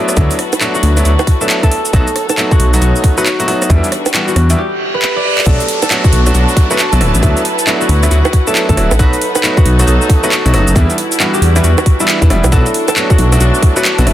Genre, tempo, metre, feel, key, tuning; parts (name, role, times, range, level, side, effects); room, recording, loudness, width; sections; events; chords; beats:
UK garage, two-step garage; 136 BPM; 4/4; swing 63% on 16ths; B minor; A4 = 439 Hz
concert harp; melody; 0.0-14.1 s; E4 to D5; -18 LUFS; equal; digital delay
warm chamber violin section; sustained chords; 0.0-14.1 s; G3 to C#5; -24 LUFS; left 1 dB; sidechain pumping
bright grand piano; stabs; 0.0-14.1 s; E3 to B4; -18 LUFS; equal; digital delay
garage drum kit; drums; 0.1-14.1 s; bongos, handclaps, hi-hat, rim click, shaker; -16 LUFS; right 2 dB; overdrive
dark detuned saw bass; bass; 0.2-14.1 s; D1 to E2; -11 LUFS; equal
electronic kick drum; drums; 0.2-13.7 s; -10 LUFS; equal
reverse cymbal and downlifter; sound effects; 4.7-9.0 s; -21 LUFS; right 3 dB
clear symphonic string section; texture; 5.5-14.1 s; D4 to A5; -22 LUFS; equal; sidechain pumping
light reverb, small room ambience; dense, heavily limited modern master; -9 LUFS; side -12 dB against mid
0.0-5.5 A section; 5.5-14.1 B section
break 4.6-5.5; reverse cymbal 4.7-5.5; drum fill 5.0-5.5; drop 5.5-14.1
0.0 D69; 1.9 B7; 3.7 Em7; 5.5 Bm7; 7.0 D69; 9.0 B7; 10.8 Em7; 12.5 Bm7
| 0.17 0.61 1.05 1.49 | 1.93 2.38 2.82 3.26 | 3.70 4.14 4.58 5.02 | 5.46 5.91 6.35 6.79 | 7.23 7.67 8.11 8.55 | 8.99 9.43 9.88 10.32 | 10.76 11.20 11.64 12.08 | 12.52 12.96 13.40 13.85